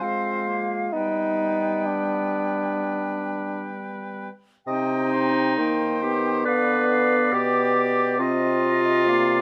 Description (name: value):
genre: classical, slow romantic movement for wind quintet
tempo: 63-70 BPM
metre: 4/4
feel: rubato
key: C minor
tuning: A4 = 443 Hz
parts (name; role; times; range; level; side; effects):
- bright silver concert flute; melody; 0.0-9.4 s; Eb5 to G5; -34 LUFS; equal; none
- clear oboe; second line; 0.0-9.4 s; B4 to Eb5; -31 LUFS; equal; none
- clear clarinet; accompaniment; 0.0-9.4 s; Bb3 to B4; -28 LUFS; equal; none
- mellow French horn; accompaniment; 0.0-9.4 s; G3 to C4; -31 LUFS; equal; none
- warm bassoon; bass; 0.0-9.4 s; B2 to F4; -28 LUFS; equal; none
room: light reverb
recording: none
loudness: -23 LUFS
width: mono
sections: 0.0-4.7 A section; 4.7-9.4 B section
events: none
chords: 0.0 Fm; 0.9 G; 4.7 Cm; 6.5 G7/D; 8.2 Cm